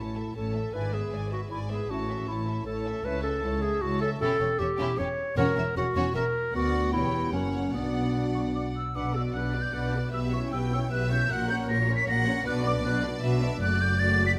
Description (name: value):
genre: quick classical-period movement for symphony orchestra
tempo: 155 BPM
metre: 3/4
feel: straight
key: A major, B minor from 4.2 s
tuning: A4 = 440 Hz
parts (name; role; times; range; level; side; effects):
- clear studio violin section; melody; 0.0-14.4 s; G4 to A5; -42 LUFS; equal; none
- clear clarinet; second line; 0.0-8.5 s; B3 to C#5; -32 LUFS; equal; none
- clear studio violin section; second line; 0.0-14.4 s; E4 to G5; -41 LUFS; equal; none
- dark studio viola section; accompaniment; 0.0-14.4 s; G#3 to B4; -38 LUFS; equal; none
- warm studio cello section; bass; 0.0-14.4 s; C#2 to B2; -35 LUFS; equal; none
- warm studio double bass section; bass; 0.0-14.4 s; E1 to D2; -35 LUFS; equal; none
- dark French horn section; sustained chords; 0.7-8.8 s; A#3 to G4; -37 LUFS; equal; none
- concert flute; second line; 8.3-14.3 s; C#6 to B6; -32 LUFS; equal; none
room: moderate scoring stage reverb, RT60 1.6 s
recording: none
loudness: -28 LUFS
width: mono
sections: 0.0-9.0 A section; 9.0-14.4 B section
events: none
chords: 0.0 A; 0.7 E7/G#; 1.9 A; 3.1 A/C#; 4.2 C#dim/E; 5.4 F#7/E; 6.5 Bm/D; 6.9 C#m7b5/E; 7.3 F#; 7.7 Bm; 10.1 C#m7b5/B; 11.3 F#/A#; 12.5 Bm; 13.6 D/F#